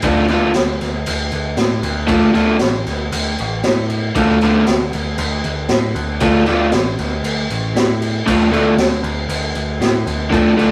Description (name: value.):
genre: garage rock duo or trio.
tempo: 116 BPM.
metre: 4/4.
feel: straight.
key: D minor.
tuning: A4 = 440 Hz.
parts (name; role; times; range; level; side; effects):
crunchy overdriven guitar; riff; 0.0-10.7 s; D3 to F4; -16 LUFS; equal; none.
growling picked electric bass; bass; 0.0-10.7 s; A1 to A2; -24 LUFS; equal; overdrive.
raw garage drum kit; drums; 0.0-10.7 s; crash cymbal, kick drum, snare drum; -21 LUFS; equal; none.
room: moderate stone room reverb, RT60 1.0 s.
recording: rough rehearsal-room recording, warm saturation.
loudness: -17 LUFS.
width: mono.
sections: 0.0-10.7 A section.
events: none.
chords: 0.0 Dm.